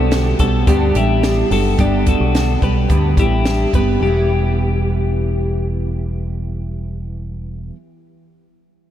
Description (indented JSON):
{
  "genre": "jangly indie pop",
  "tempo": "108 BPM",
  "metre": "4/4",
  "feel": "straight",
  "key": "E minor",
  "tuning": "A4 = 441 Hz",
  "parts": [
    { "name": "fingerpicked steel-string acoustic guitar", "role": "accompaniment", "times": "0.0-7.8 s", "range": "G2 to E4", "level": "-21 LUFS", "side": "right 4 dB", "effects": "ensemble chorus" },
    { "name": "twelve-string electric guitar", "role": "arpeggios", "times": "0.0-5.7 s", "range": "D4 to B4", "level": "-21 LUFS", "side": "left 4 dB", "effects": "tape echo" },
    { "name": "deep dub picked electric bass", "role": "bass", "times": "0.0-7.7 s", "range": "E1 to D2", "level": "-18 LUFS", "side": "equal", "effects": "none" },
    { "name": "compact cocktail drum kit", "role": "drums", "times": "0.1-3.9 s", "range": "hi-hat, kick drum, snare drum", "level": "-19 LUFS", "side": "equal", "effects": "none" }
  ],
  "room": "moderate huge ambient reverb, RT60 4.0 s",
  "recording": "dreamy mix soaked in reverb",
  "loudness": "-14 LUFS",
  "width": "side -11 dB against mid",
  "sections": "0.0-4.0 A section; 4.0-6.2 B section",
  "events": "none",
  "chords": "0.0 G; 4.0 Em",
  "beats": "0.12 0.68 1.23 | 1.79 2.34 2.90 3.46 | 4.01 4.57 5.13 5.69"
}